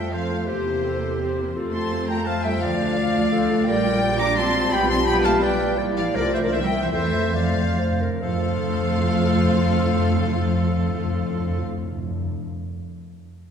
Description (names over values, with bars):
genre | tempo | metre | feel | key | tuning
quick classical-period movement for symphony orchestra | 134-173 BPM | 3/4 | rubato | F major | A4 = 440 Hz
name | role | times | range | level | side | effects
warm studio violin section | melody | 0.0-11.6 s | C5 to D6 | -29 LUFS | left 4 dB | none
bright oboe | second line | 0.0-11.6 s | G4 to Bb5 | -31 LUFS | right 1 dB | none
mellow hollow flute section | second line | 0.0-11.6 s | G4 to Bb5 | -30 LUFS | equal | none
warm clarinet | second line | 0.0-11.6 s | G4 to D5 | -29 LUFS | left 1 dB | none
warm studio viola section | accompaniment | 0.0-11.6 s | F3 to A4 | -30 LUFS | equal | none
dark French horn section | sustained chords | 0.0-11.6 s | G3 to G4 | -28 LUFS | equal | none
warm studio cello section | bass | 0.0-11.6 s | C3 to D4 | -29 LUFS | right 2 dB | none
warm studio double bass section | bass | 0.0-11.6 s | Bb1 to F2 | -27 LUFS | right 1 dB | none
warm studio violin section | second line | 0.1-11.6 s | F4 to D6 | -33 LUFS | left 2 dB | none
timpani | percussion | 6.9-12.4 s | F2 | -27 LUFS | left 1 dB | none
room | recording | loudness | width
wet concert hall reverb, RT60 2.4 s | heard from further back in the room | -19 LUFS | side -7 dB against mid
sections
0.0-8.2 A section; 8.2-10.9 B section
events
slowing down 5.3-8.2; timpani fill 6.9-8.2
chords
0.5 C7/E; 1.6 F; 2.6 Dm; 3.7 Gm7/Bb; 4.7 G7/B; 5.8 Bb6; 6.2 F/C; 6.5 C7; 6.9 F